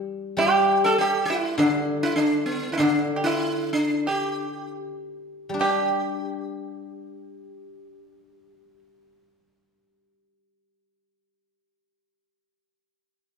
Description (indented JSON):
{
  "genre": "chinese traditional, Chinese chamber ensemble",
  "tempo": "67-100 BPM",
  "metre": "2/4",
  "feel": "straight",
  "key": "unclear",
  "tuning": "A4 = 440 Hz",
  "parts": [
    { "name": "guzheng", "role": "accompaniment", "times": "0.0-11.6 s", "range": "D3 to G4", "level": "-28 LUFS", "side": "left 3 dB", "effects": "none" },
    { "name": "sitar", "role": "melody", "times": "0.4-8.8 s", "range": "B3 to A4", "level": "-26 LUFS", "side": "equal", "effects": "none" },
    { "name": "pipa", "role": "second line", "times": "0.4-8.8 s", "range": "D4 to A4", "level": "-24 LUFS", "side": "right 3 dB", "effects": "none" }
  ],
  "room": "wet recital hall reverb, RT60 1.4 s",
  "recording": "recorded in a church or concert hall",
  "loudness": "-21 LUFS",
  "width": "side -5 dB against mid",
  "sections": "0.0-5.6 A section; 5.6-9.1 B section",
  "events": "slowing down 2.8-5.6",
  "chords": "none"
}